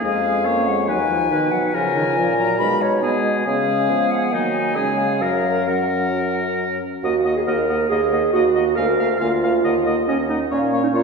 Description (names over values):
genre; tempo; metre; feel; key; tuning
quick classical-period movement for wind quintet; 138 BPM; 4/4; rubato; F# major, Eb minor from 7.0 s; A4 = 437 Hz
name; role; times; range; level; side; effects
concert flute; melody; 0.0-11.0 s; C#5 to B5; -24 LUFS; left 4 dB; none
clear oboe; second line; 0.0-11.0 s; D#4 to F5; -25 LUFS; left 2 dB; none
clear French horn; accompaniment; 0.0-11.0 s; D#3 to Bb3; -26 LUFS; equal; none
warm clarinet; accompaniment; 0.0-11.0 s; A#3 to Bb4; -22 LUFS; right 3 dB; none
warm bassoon; bass; 0.0-11.0 s; D2 to E#3; -24 LUFS; right 1 dB; none
room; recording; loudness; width
wet scoring stage reverb, RT60 1.7 s; heard from further back in the room; -17 LUFS; side -4 dB against mid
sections
0.0-7.0 A section; 7.0-11.0 B section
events
none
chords
0.0 C#/E#; 0.9 B/D#; 1.7 A#m/C#; 2.6 G#m/B; 3.5 C#; 4.3 D#m; 4.8 C#; 5.2 F#; 7.0 Ebm; 8.8 Bb7/D; 9.6 Ebm; 10.5 Bbm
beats
| 0.04 0.47 0.89 1.31 | 1.74 2.17 2.59 3.03 | 3.46 3.89 4.33 4.76 | 5.21 5.67 6.13 6.58 | 7.03 7.47 7.91 8.34 | 8.78 9.21 9.65 10.08 | 10.51 10.94